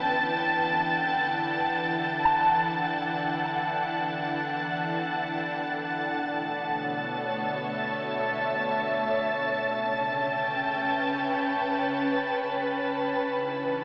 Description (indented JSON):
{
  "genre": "ambient",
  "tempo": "free time",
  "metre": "none",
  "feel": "none",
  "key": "E dorian",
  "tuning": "A4 = 440 Hz",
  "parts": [
    { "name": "ethereal airy pad", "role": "sustained chords", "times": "0.0-13.8 s", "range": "B2 to G5", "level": "-31 LUFS", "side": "equal", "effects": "ensemble chorus, built-in reverb" },
    { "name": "electric guitar with an envelope filter", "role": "arpeggios", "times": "0.0-6.1 s", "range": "C#4 to A5", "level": "-30 LUFS", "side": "equal", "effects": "spring reverb, diffuse ambient delay" },
    { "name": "analog drone", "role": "drone", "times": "0.0-6.0 s", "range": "E3 to B3", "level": "-50 LUFS", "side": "equal", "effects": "none" },
    { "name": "clear studio violin section", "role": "texture", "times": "0.0-13.8 s", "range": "A5 to A6", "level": "-31 LUFS", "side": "equal", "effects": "none" }
  ],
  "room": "wet lush hall reverb, RT60 2.5 s",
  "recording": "AM radio sound",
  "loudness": "-28 LUFS",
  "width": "mono",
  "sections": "0.0-5.8 A section; 5.8-13.8 B section",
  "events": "none",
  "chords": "0.0 Em9; 5.8 Bm11; 9.4 A7/C#; 13.0 Em7"
}